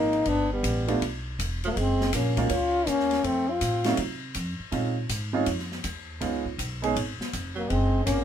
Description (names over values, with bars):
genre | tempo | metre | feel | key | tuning
jazz, small-group swing and bop | 161 BPM | 4/4 | swing 65% on 8ths | unclear | A4 = 445 Hz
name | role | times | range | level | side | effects
breathy trombone | melody | 0.0-4.0, 7.6-8.2 s | A3 to F4 | -26 LUFS | left 3 dB | none
clear tenor saxophone | second line | 0.0-4.0, 7.6-8.2 s | F3 to Db4 | -32 LUFS | right 6 dB | none
warm baby grand piano | accompaniment | 0.0-6.9 s | F3 to Ab4 | -28 LUFS | right 5 dB | none
upright bass | bass | 0.0-8.2 s | Fb1 to C3 | -30 LUFS | equal | none
open jazz drum kit | drums | 0.1-8.2 s | hi-hat, kick drum, ride cymbal, snare drum | -34 LUFS | left 2 dB | none
room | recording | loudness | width
light reverb | minimal, uncompressed stereo recording | -24 LUFS | side -9 dB against mid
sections
0.0-8.2 A section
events
none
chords
0.3 Gadd9; 1.8 Gbmaj9; 3.2 F; 4.7 Bbm11; 6.2 Db9; 7.7 Gbadd9(#11)